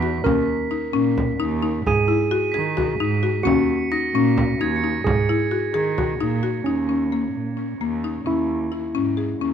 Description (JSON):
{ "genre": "contemporary instrumental, chamber music in an uneven meter", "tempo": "262 BPM (eighths)", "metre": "7/8", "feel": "straight", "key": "Eb phrygian", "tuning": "A4 = 440 Hz", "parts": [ { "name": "buzzing marimba with medium mallets", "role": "arpeggios", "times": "0.0-9.5 s", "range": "Bb3 to Ab4", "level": "-23 LUFS", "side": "left 7 dB", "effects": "none" }, { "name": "muted cello", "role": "bass", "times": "0.0-9.5 s", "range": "Eb2 to Eb3", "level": "-25 LUFS", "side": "right 4 dB", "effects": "none" }, { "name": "frame drum", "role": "percussion", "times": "0.0-6.6 s", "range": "none", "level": "-27 LUFS", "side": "right 2 dB", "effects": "none" }, { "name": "crotales", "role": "texture", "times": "0.0-5.4 s", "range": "Ab6 to Eb7", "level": "-29 LUFS", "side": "right 6 dB", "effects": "none" }, { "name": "tine electric piano", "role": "second line", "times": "0.2-9.5 s", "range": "Db4 to Bb4", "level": "-26 LUFS", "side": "right 4 dB", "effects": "none" } ], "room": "light reverb", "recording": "close, detailed microphones", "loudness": "-19 LUFS", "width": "side -8 dB against mid", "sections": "0.0-6.7 A section; 6.7-9.5 B section", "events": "none", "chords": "0.3 Eb5; 1.9 Ab5; 3.5 Ebm7; 5.1 Ab5; 6.7 Eb5; 8.3 Dbm/Eb" }